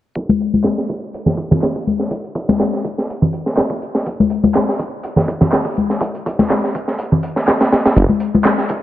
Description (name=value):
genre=breakbeat, breaks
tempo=123 BPM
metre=4/4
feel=swing 54% on 16ths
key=unclear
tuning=A4 = 441 Hz
part: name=crunchy breakbeat drum kit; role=drums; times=0.2-8.8 s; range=hi-hat, kick drum, snare drum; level=-18 LUFS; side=right 1 dB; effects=high-pass filter on kick, high-pass filter on hats, high-pass filter on snare, high-pass filter on room
part: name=congas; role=percussion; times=0.3-8.4 s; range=none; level=-16 LUFS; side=left 2 dB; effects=none
part: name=electronic handclaps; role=drums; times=0.6-8.6 s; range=none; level=-26 LUFS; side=right 1 dB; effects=overdrive, low-pass filter on snare
part: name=detuned saw bass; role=bass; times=8.0 s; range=F#1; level=-12 LUFS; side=right 1 dB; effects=tube saturation
room=small room ambience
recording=low-pass filter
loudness=-15 LUFS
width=side -13 dB against mid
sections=0.2-8.8 A section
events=filter sweep on drum 0.2-8.8; filter sweep 0.2-8.8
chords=none